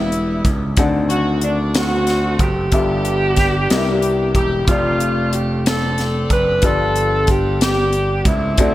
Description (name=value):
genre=slow gospel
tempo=62 BPM (dotted quarters)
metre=6/8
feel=straight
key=unclear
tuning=A4 = 436 Hz
part: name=clear saxophone section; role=melody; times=0.0-8.7 s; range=G3 to B4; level=-23 LUFS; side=left 2 dB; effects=digital delay
part: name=warm alto saxophone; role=melody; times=0.0-8.7 s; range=D4 to B4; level=-21 LUFS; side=right 2 dB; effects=none
part: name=clear concert grand piano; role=accompaniment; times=0.0-8.7 s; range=G2 to F#5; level=-23 LUFS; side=left 4 dB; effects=none
part: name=gritty slap bass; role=bass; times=0.0-8.7 s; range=E1 to D2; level=-20 LUFS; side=equal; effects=overdrive
part: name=crisp fusion drum kit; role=drums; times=0.1-8.7 s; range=hi-hat, kick drum, snare drum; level=-19 LUFS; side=equal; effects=gated reverb
room=light reverb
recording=bright 1980s-style digital production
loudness=-15 LUFS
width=side -15 dB against mid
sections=0.0-8.7 A section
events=none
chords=0.0 Em7; 0.8 D7b9; 2.7 G13; 3.7 C7; 4.7 F69; 6.6 G9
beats=| 0.78 1.75 | 2.73 3.70 | 4.68 5.66 | 6.63 7.61 | 8.59